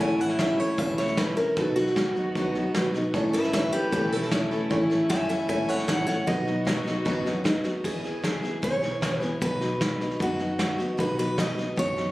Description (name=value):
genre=honky-tonk and classic country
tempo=153 BPM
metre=4/4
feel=straight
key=unclear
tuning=A4 = 440 Hz
part: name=picked steel-string acoustic guitar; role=melody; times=0.0-12.1 s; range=F#4 to G#5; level=-29 LUFS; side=equal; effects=none
part: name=dark upright piano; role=accompaniment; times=0.0-7.8 s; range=D#4 to D#5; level=-30 LUFS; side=right 1 dB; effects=none
part: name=picked steel-string acoustic guitar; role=accompaniment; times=0.0-12.1 s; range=E2 to A4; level=-29 LUFS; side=left 1 dB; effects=none
part: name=dark studio violin section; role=sustained chords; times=0.0-7.8 s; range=A3 to F#4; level=-34 LUFS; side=equal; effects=none
part: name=upright bass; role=bass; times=0.0-12.1 s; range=E1 to E2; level=-36 LUFS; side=equal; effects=none
part: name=soft brush drum kit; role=drums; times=0.0-12.0 s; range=crash cymbal, hi-hat, kick drum, snare drum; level=-30 LUFS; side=equal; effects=none
room=moderate large studio reverb, RT60 1.4 s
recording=recorded on a phone in the room, club reverb, compression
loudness=-23 LUFS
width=side -17 dB against mid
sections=0.0-7.8 A section; 7.8-12.1 B section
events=steel-string acoustic guitar solo 0.0-7.8; drum fill 7.7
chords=0.0 A; 1.6 B; 3.1 A; 6.3 B; 7.8 E; 9.4 B